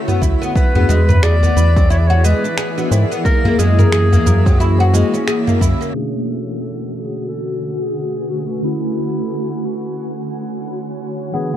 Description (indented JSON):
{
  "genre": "organic downtempo",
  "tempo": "89 BPM",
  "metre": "4/4",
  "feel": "swing 59% on 16ths",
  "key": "B dorian",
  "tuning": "A4 = 441 Hz",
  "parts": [
    { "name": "granular cloud pad", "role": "sustained chords", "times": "0.0-11.6 s", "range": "D3 to D5", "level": "-24 LUFS", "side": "equal", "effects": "built-in reverb, sidechain pumping" },
    { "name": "twinkling granular texture", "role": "texture", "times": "0.0-11.6 s", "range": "E4 to G#5", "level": "-32 LUFS", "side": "right 1 dB", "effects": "built-in reverb" },
    { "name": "mellow tine electric piano", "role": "accompaniment", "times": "0.1-11.6 s", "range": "B2 to C#5", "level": "-24 LUFS", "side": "left 2 dB", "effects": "medium stereo tremolo, sidechain pumping, digital delay" },
    { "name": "oud", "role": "arpeggios", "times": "0.1-5.9, 11.3-11.6 s", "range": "F#3 to B4", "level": "-21 LUFS", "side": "left 1 dB", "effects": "digital delay" },
    { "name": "deep house drum kit", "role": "drums", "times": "0.1-5.9 s", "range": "finger snaps, shaker, toms", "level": "-20 LUFS", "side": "equal", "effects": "low-pass filter on toms, low-pass filter on perc, low-pass filter on snare, low-pass filter on room" },
    { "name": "round analog bass", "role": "bass", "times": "0.2-5.7 s", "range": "D2 to G#2", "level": "-13 LUFS", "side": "equal", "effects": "sidechain pumping" },
    { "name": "electronic kick drum", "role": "drums", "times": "0.2-5.8 s", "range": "none", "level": "-15 LUFS", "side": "equal", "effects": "none" },
    { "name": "breathy clarinet", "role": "melody", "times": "0.6-11.6 s", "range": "E4 to D5", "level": "-24 LUFS", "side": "equal", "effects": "digital delay" },
    { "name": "tabla", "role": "percussion", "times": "0.9-5.1 s", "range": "none", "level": "-23 LUFS", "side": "left 1 dB", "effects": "none" }
  ],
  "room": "little or no reverb",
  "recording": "dark, warm production, low-pass filter",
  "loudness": "-14 LUFS",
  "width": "side -11 dB against mid",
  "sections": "0.0-5.9 A section; 5.9-11.6 B section",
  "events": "band accent 5.3-5.6; filter sweep on ambient pad 5.9-11.6",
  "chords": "0.0 Dmaj7; 0.6 E7; 3.3 F#7; 5.9 Bm7; 8.6 Dmaj7"
}